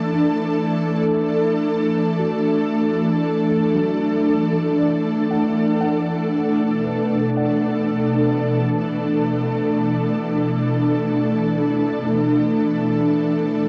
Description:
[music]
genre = ambient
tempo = 58 BPM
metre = 4/4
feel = straight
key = unclear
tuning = A4 = 444 Hz
[part]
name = ethereal airy pad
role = sustained chords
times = 0.0-13.7 s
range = B2 to A4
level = -20 LUFS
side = equal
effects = ensemble chorus, built-in reverb
[part]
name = felt-muted upright piano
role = arpeggios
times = 0.1-13.7 s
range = F#3 to F#5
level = -32 LUFS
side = equal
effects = delay
[sound]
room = wet huge ambient reverb, RT60 7.5 s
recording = worn, warbling old tape, cassette tape, warbly pitch drift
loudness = -20 LUFS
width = mono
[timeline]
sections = 0.0-13.7 A section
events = fade-in on felt piano 0.0-13.7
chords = 0.0 E9sus4; 6.3 Bm7

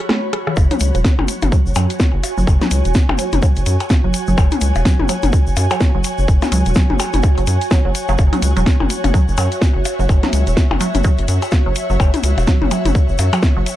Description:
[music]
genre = minimal techno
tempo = 126 BPM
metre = 4/4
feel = swing 59% on 16ths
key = unclear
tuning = A4 = 440 Hz
[part]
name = garage drum kit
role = drums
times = 0.0-13.8 s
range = hi-hat, rim click, snare drum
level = -22 LUFS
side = equal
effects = studio ambience
[part]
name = ethereal airy pad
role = texture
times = 0.0-13.8 s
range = F#4 to B5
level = -24 LUFS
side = right 1 dB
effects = ensemble chorus, built-in reverb, sidechain pumping
[part]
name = resonant blip pluck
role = riff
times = 0.1-13.6 s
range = E3 to A3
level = -24 LUFS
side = right 3 dB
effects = phaser, cassette tape, sidechain pumping, tape echo
[part]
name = electronic percussion blips and toms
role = percussion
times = 0.1-13.4 s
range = none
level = -22 LUFS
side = left 5 dB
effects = studio ambience, digital delay
[part]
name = rubbery square bass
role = bass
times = 0.6-13.6 s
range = E1 to F#2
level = -17 LUFS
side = equal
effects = sidechain pumping
[part]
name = electronic kick drum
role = drums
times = 0.6-13.5 s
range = none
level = -14 LUFS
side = equal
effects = studio ambience
[part]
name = tube shaker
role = percussion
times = 0.6-13.8 s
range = none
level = -30 LUFS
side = left 5 dB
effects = none
[sound]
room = light reverb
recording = dark, warm production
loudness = -13 LUFS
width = side -13 dB against mid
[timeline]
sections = 0.6-13.8 A section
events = break 0.0-0.6; drum fill 0.0-0.6; drop 0.6-13.8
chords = 0.0 F#5; 0.6 F#7(no3)

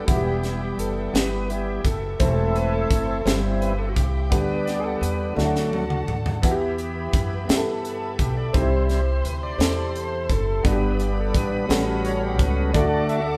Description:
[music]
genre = slow gospel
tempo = 57 BPM (dotted quarters)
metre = 6/8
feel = straight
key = unclear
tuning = A4 = 445 Hz
[part]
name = dark baby grand piano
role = accompaniment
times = 0.0-13.4 s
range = G2 to A4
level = -29 LUFS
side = equal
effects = none
[part]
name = bright tonewheel organ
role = sustained chords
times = 0.0-13.4 s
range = F#3 to E5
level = -29 LUFS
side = equal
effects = slow rotary speaker
[part]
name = warm studio string section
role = sustained chords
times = 0.0-13.4 s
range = G4 to D6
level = -40 LUFS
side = equal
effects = none
[part]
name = upright bass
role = bass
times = 0.0-13.4 s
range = E1 to G2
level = -29 LUFS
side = equal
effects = none
[part]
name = modern studio drum kit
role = drums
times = 0.1-13.3 s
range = hi-hat, kick drum, snare drum, toms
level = -26 LUFS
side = equal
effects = none
[sound]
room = moderate stone room reverb, RT60 1.1 s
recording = band playing live in one room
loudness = -23 LUFS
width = mono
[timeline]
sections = 0.0-13.4 A section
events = tonewheel organ solo 0.0-13.4; drum fill 5.4-6.4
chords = 0.1 Em; 2.2 Am/E; 3.3 C/G; 4.3 G/D; 5.4 D; 6.4 Em; 8.5 C; 10.6 G; 11.7 A13; 12.7 D

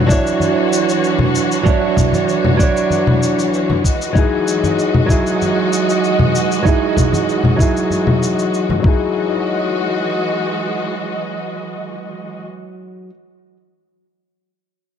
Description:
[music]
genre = sunset chillout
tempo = 96 BPM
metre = 4/4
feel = straight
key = E major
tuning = A4 = 440 Hz
[part]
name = flamenco guitar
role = accompaniment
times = 0.0-13.1 s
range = F#3 to C#5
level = -18 LUFS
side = moving between left 6 dB and right 9 dB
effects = auto-pan, low-pass filter, tape echo
[part]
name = warm studio string section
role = sustained chords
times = 0.0-12.4 s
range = E3 to D#5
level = -21 LUFS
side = equal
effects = none
[part]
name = cabasa and congas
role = drums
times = 0.1-8.7 s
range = none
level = -19 LUFS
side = left 2 dB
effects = none
[part]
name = electronic kick drum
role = drums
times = 0.1-9.0 s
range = none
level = -16 LUFS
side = equal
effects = none
[part]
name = congas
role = percussion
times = 0.4-8.8 s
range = none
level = -23 LUFS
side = left 2 dB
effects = none
[sound]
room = light reverb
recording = dark, warm production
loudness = -14 LUFS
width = side -8 dB against mid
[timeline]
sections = 0.0-9.2 A section; 9.2-11.7 B section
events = filter sweep on nylon-string guitar 0.0-9.2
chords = 0.0 Dmaj9; 3.8 Emaj9

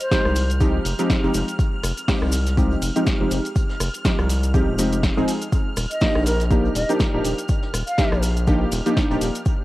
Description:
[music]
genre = deep house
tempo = 122 BPM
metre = 4/4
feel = swing 56% on 16ths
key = unclear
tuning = A4 = 443 Hz
[part]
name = breathy mellow silver concert flute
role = melody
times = 0.0-0.5, 5.9-8.2 s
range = Bb4 to F5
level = -27 LUFS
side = equal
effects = analog delay
[part]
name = punchy analog drum machine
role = drums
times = 0.0-9.6 s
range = hi-hat, rim click, snare drum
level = -28 LUFS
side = equal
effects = none
[part]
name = maracas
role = percussion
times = 0.0-9.6 s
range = none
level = -33 LUFS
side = left 2 dB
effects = none
[part]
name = soft string machine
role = texture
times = 0.0-9.6 s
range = F6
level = -35 LUFS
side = equal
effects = ensemble chorus, sidechain pumping, cassette tape
[part]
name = deep mellow chord stab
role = stabs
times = 0.1-9.2 s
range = F3 to Ab4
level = -23 LUFS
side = equal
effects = analog chorus, cassette tape, analog delay
[part]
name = electronic kick drum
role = drums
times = 0.1-9.6 s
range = none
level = -21 LUFS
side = equal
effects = overdrive
[part]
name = soft brush drum kit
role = drums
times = 0.1-9.6 s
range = hi-hat, snare drum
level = -39 LUFS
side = left 1 dB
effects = none
[part]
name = round analog bass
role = bass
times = 0.3-9.3 s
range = Eb1 to C2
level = -23 LUFS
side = equal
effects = sidechain pumping
[sound]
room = light reverb, small room ambience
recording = home recording on cassette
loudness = -18 LUFS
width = side -17 dB against mid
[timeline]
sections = 0.0-9.6 A section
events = none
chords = 0.0 Fm9; 5.5 Ebmaj9

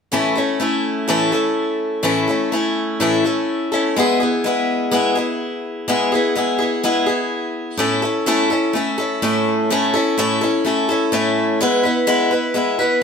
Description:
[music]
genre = rock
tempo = 126 BPM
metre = 4/4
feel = straight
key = A major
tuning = A4 = 440 Hz
[part]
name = picked swing-style acoustic guitar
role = solo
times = 0.1-13.0 s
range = A2 to B4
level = -16 LUFS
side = left 1 dB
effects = none
[sound]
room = moderate studio reverb, RT60 0.9 s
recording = band playing live in one room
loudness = -16 LUFS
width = side -6 dB against mid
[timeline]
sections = 0.1-7.8 A section; 7.8-13.0 B section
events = none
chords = 0.1 A; 4.0 E/G#; 7.8 A; 11.6 E/G#

